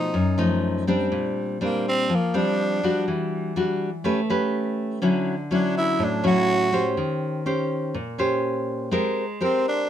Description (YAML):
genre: bossa nova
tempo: 123 BPM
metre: 4/4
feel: straight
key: unclear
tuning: A4 = 438 Hz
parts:
  - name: growling tenor saxophone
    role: melody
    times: 0.0-9.9 s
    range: Bb3 to F#4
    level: -24 LUFS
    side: right 1 dB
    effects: none
  - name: nylon-string guitar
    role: accompaniment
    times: 0.0-9.9 s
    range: F#2 to C5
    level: -22 LUFS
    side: left 1 dB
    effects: none
room: moderate studio reverb, RT60 0.6 s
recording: none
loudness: -21 LUFS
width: side -10 dB against mid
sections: 0.0-1.1 A section; 1.1-9.9 B section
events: tenor saxophone solo 1.1-9.9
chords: 0.0 B7#11 (rootless); 1.1 Bb69; 3.1 Em9; 4.0 A9; 5.0 Dmaj9; 7.0 Eb6; 8.9 Abmaj9